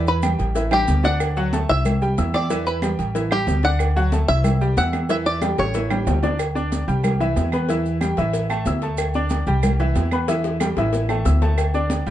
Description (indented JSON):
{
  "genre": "latin, salsa",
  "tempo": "185 BPM",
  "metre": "4/4",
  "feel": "straight",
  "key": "D major",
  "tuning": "A4 = 440 Hz",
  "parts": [
    { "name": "bluegrass banjo", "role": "melody", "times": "0.0-6.0 s", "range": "G4 to B5", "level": "-23 LUFS", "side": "equal", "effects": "none" },
    { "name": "bright baby grand piano", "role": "accompaniment", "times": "0.0-12.1 s", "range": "E3 to E6", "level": "-24 LUFS", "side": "equal", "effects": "none" },
    { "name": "upright bass", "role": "bass", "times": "0.0-12.1 s", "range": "A1 to E2", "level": "-21 LUFS", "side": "equal", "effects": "none" },
    { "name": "congas", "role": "percussion", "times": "0.1-12.1 s", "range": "none", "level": "-28 LUFS", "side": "equal", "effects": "none" },
    { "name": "maracas", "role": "percussion", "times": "0.1-12.1 s", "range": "none", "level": "-41 LUFS", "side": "right 5 dB", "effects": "none" },
    { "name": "claves", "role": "percussion", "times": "0.2-11.7 s", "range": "none", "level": "-33 LUFS", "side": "right 5 dB", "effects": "none" },
    { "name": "cowbell and bongos", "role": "percussion", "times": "0.2-12.1 s", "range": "none", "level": "-30 LUFS", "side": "left 4 dB", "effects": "none" },
    { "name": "timbales and agogo bells", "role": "percussion", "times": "0.2-12.1 s", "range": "none", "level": "-30 LUFS", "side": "right 7 dB", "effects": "none" }
  ],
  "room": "light reverb",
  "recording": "dark, warm production, nothing above 10.4 kHz",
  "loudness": "-18 LUFS",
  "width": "side -12 dB against mid",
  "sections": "0.0-6.4 A section; 6.4-12.1 B section",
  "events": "drum fill 0.7-1.2, 5.4-6.4, 10.3-11.6",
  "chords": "0.0 Em; 0.6 A5; 1.2 D; 1.9 C; 2.5 Em7; 3.1 A5; 3.8 D; 4.4 C; 5.1 A7; 6.4 Csus2; 7.0 C; 7.7 Em; 8.3 A5; 9.0 D5; 9.6 C; 10.3 Em; 10.9 A5; 11.6 D5"
}